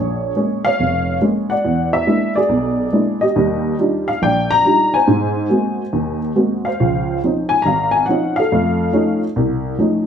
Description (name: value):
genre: solo jazz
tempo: 140 BPM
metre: 4/4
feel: swing 68% on 8ths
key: unclear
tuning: A4 = 439 Hz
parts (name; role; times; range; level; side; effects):
- honky-tonk upright piano; solo; 0.0-10.1 s; F1 to Bb5; -15 LUFS; equal; none
room: wet studio reverb, RT60 0.8 s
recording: band playing live in one room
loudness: -15 LUFS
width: side -8 dB against mid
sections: 0.0-10.1 A section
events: none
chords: 0.0 Bbm7; 1.6 E7#11; 3.4 Ebmaj9; 5.1 Ab9; 6.8 Dbmaj9; 8.5 F7b13